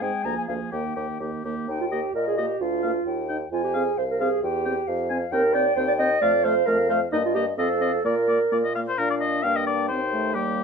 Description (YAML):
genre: quick classical-period movement for wind quintet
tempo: 132 BPM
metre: 2/4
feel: straight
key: Eb major, Bb major from 5.3 s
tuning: A4 = 436 Hz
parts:
  - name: concert flute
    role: melody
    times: 0.0-10.6 s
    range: D5 to Bb5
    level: -30 LUFS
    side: left 7 dB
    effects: none
  - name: warm oboe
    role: second line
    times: 0.0-10.6 s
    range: G4 to Ab5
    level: -28 LUFS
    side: left 4 dB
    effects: none
  - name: clear French horn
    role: accompaniment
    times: 0.0-10.6 s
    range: Eb3 to Eb4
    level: -32 LUFS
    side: left 2 dB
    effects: none
  - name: mellow clarinet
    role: accompaniment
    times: 0.0-10.6 s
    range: Bb3 to Eb5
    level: -24 LUFS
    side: right 3 dB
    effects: none
  - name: warm bassoon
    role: bass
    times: 0.0-10.6 s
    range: C2 to Bb2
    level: -29 LUFS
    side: right 2 dB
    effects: none
room: light reverb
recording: minimal, uncompressed stereo recording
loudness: -21 LUFS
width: side -6 dB against mid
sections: 0.0-1.7 A section; 1.7-9.0 A section; 9.0-10.6 B section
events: none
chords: 0.2 Bb7/D; 0.7 Eb; 2.6 Bb/D; 3.1 Eb; 3.5 Fm; 4.4 C/E; 4.9 F5; 5.3 Cm/Eb; 6.2 F; 7.1 Eb/G; 7.6 F7; 8.0 Bb; 9.4 Gm; 9.9 Cm/Eb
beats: 0.25 | 0.72 1.20 | 1.68 2.15 | 2.61 3.07 | 3.52 3.98 | 4.43 4.88 | 5.32 5.76 | 6.21 6.67 | 7.12 7.58 | 8.04 8.51 | 8.98 9.44 | 9.89 10.34